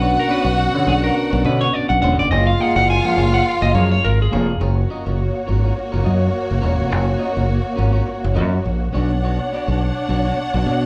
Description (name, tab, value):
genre	disco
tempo	104 BPM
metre	4/4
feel	swing 56% on 16ths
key	F# major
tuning	A4 = 440 Hz
part	clean electric guitar	melody	0.0-4.6 s	G#4 to G#5	-23 LUFS	equal	tube saturation
part	warm studio string section	second line	0.0-10.9 s	A#3 to F#5	-25 LUFS	equal	none
part	clean electric guitar	accompaniment	0.0-10.9 s	A#3 to D#5	-29 LUFS	equal	none
part	warm concert grand piano	accompaniment	0.0-4.5 s	B2 to C#4	-28 LUFS	equal	none
part	mellow French horn section	sustained chords	0.0-4.6 s	A#2 to E#4	-27 LUFS	equal	none
part	fingered electric bass	bass	0.0-10.9 s	E1 to B2	-21 LUFS	equal	none
room	wet large studio reverb, RT60 1.1 s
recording	band playing live in one room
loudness	-18 LUFS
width	mono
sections	0.0-4.6 A section; 4.6-10.9 B section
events	clean electric guitar solo 0.0-4.6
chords	0.0 Bmadd9; 2.3 F#maj9; 4.6 F#maj7; 8.9 Bmadd9